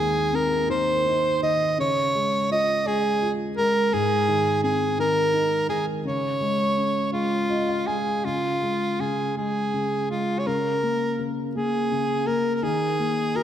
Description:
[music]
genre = children's music, lullaby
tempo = 55 BPM (dotted quarters)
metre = 6/8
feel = rubato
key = Db major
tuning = A4 = 440 Hz
[part]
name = bright soprano saxophone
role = melody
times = 0.0-13.4 s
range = F4 to Eb5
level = -23 LUFS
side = right 1 dB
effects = none
[part]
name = felt-muted upright piano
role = accompaniment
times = 0.0-13.4 s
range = Eb2 to Ab5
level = -26 LUFS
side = left 2 dB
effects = none
[sound]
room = wet scoring stage reverb, RT60 2.0 s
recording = recorded in a church or concert hall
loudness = -21 LUFS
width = side -10 dB against mid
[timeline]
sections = 0.0-8.2 A section; 8.2-13.4 A section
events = felt piano fill 7.1-8.2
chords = 0.0 Ab; 1.8 Db; 3.9 Ab; 6.0 Db; 10.5 Bbm7/Db; 12.6 Eb5

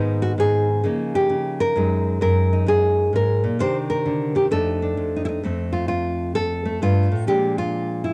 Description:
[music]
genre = solo jazz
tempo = 130 BPM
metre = 4/4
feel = swing 66% on 8ths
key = unclear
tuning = A4 = 440 Hz
[part]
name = nylon-string guitar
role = solo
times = 0.0-8.1 s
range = F2 to C5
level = -21 LUFS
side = equal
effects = none
[sound]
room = light reverb, small room reverb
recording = home recording on cassette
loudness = -21 LUFS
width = mono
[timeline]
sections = 0.0-5.4 A section; 5.4-8.1 B section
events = none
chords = 0.0 Abm; 0.8 Db69; 1.7 Gb69; 3.6 Cm9; 4.5 F6; 5.4 F; 7.3 Bb7

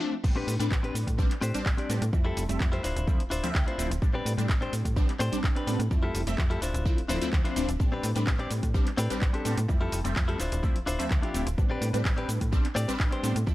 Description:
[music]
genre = filtered disco house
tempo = 127 BPM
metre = 4/4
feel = straight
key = A minor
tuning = A4 = 440 Hz
[part]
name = funky polysynth comp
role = accompaniment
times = 0.0-13.5 s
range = F3 to E5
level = -33 LUFS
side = equal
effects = chorus, phaser, sidechain pumping, low-pass filter
[part]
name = slap-like FM bass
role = bass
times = 0.2-13.5 s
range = D1 to A2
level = -30 LUFS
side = equal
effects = sidechain pumping, low-pass filter
[part]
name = electronic kick drum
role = drums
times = 0.2-13.5 s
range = none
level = -26 LUFS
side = equal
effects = none
[part]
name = punchy analog drum machine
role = drums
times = 0.2-13.5 s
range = cabasa, crash cymbal, handclaps, hi-hat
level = -36 LUFS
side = equal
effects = sidechain pumping on hats, sidechain pumping on perc, sidechain pumping on cymbals
[part]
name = direct-recorded clean electric guitar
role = riff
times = 0.4-13.4 s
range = C4 to G5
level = -33 LUFS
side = left 2 dB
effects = spring reverb, sidechain pumping, low-pass filter
[sound]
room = little or no reverb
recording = dry, gritty hardware recording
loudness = -25 LUFS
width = side -16 dB against mid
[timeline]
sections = 0.2-13.5 A section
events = break 0.0; drop 0.2-13.5; clean electric guitar fill 3.3-4.0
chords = 0.2 Am11; 2.1 Fmaj9; 2.8 Dm9; 4.0 Am11; 5.9 Fmaj9; 6.6 Dm9; 7.8 Am11; 9.7 Fmaj9; 10.4 Dm9; 11.6 Am11

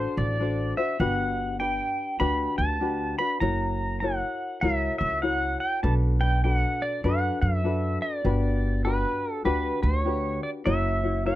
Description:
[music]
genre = Hawaiian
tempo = 99 BPM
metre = 4/4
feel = swing 63% on 8ths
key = unclear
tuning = A4 = 436 Hz
[part]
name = pedal steel guitar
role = melody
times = 0.0-11.4 s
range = B4 to B5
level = -28 LUFS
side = right 1 dB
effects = none
[part]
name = tenor ukulele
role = accompaniment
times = 0.0-11.4 s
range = D4 to C#5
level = -30 LUFS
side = left 4 dB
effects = none
[part]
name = upright bass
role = bass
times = 0.0-11.4 s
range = F#1 to F#2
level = -26 LUFS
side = right 1 dB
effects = none
[sound]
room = light reverb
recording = dry, close 1970s-style studio recording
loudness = -23 LUFS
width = side -14 dB against mid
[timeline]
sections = 0.0-11.4 A section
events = none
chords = 0.0 D7; 1.0 Gmaj7; 3.4 F#7; 5.8 Bm7; 8.2 Gmaj7; 10.7 F#7

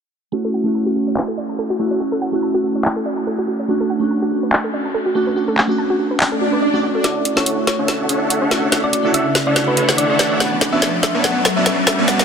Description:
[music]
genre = future bass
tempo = 143 BPM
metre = 4/4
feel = swing 55% on 16ths, half-time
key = unclear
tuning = A4 = 440 Hz
[part]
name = glassy digital keys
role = accompaniment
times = 0.3-12.2 s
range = C#3 to F#4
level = -20 LUFS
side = right 1 dB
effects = chorus, tape echo
[part]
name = soft round pluck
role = arpeggios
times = 0.3-7.0 s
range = F#4 to A5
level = -24 LUFS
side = right 1 dB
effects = chorus, tape echo
[part]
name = trap drum kit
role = drums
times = 1.2-12.2 s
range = handclaps, hi-hat, snare drum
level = -20 LUFS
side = left 1 dB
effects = none
[part]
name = swell and riser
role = sound effects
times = 6.3-12.2 s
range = none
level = -24 LUFS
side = right 1 dB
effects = none
[part]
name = thumb-piano-like synth pluck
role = melody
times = 7.0-12.2 s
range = B4 to F#5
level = -22 LUFS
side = left 1 dB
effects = chorus, tape echo
[part]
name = supersaw chords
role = riff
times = 7.0-12.2 s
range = B3 to A5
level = -20 LUFS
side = equal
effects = vintage 12-bit sampler grit, low-pass filter
[sound]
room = moderate huge ambient reverb, RT60 4.7 s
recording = dense, heavily limited modern master, low-pass filter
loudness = -15 LUFS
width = side -6 dB against mid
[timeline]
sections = 0.3-7.0 A section; 7.0-12.2 B section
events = filter sweep on synth arpeggio sound 0.3-7.0; filter sweep 0.3-7.0; swell 6.3-7.0; build-up 7.0-12.2; drum fill 7.0-12.2; riser 7.0-12.2; filter sweep on supersaw synth 7.0-12.2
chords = 0.3 Dmaj7; 3.7 Bm7 (rootless); 7.0 Dmaj7; 10.4 Bm7

